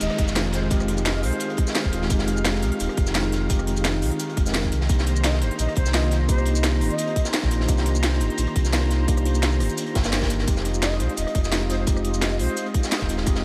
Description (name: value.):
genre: liquid drum and bass.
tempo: 172 BPM.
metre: 4/4.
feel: swing 53% on 16ths.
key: F minor.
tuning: A4 = 442 Hz.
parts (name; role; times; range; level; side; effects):
silver concert flute; melody; 0.0-1.5, 5.2-7.3, 10.8-12.7 s; C5 to Eb5; -36 LUFS; equal; delay.
mellow tine electric piano; accompaniment; 0.0-13.4 s; Ab3 to Bb4; -31 LUFS; equal; delay.
lush unison pad; sustained chords; 0.0-13.4 s; Eb3 to Bb5; -33 LUFS; equal; chorus, sidechain pumping.
sub bass with octave; bass; 0.0-13.4 s; Eb1 to C2; -26 LUFS; equal; none.
crunchy breakbeat drum kit; drums; 0.0-13.4 s; hi-hat, snare drum; -35 LUFS; equal; high-pass filter on hats, small room ambience, high-pass filter on snare, high-pass filter on room.
drum and bass drum kit; drums; 0.0-13.4 s; hi-hat, rim click, shaker, snare drum; -31 LUFS; equal; small room ambience.
downlifter; sound effects; 0.0-2.1 s; none; -42 LUFS; equal; none.
electronic kick drum; drums; 0.2-13.3 s; none; -25 LUFS; equal; small room ambience.
room: light reverb, studio reverb.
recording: none.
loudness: -23 LUFS.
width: mono.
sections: 0.0-13.4 A section.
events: none.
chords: 0.0 Fm7; 4.7 Cm7; 10.5 Fm7.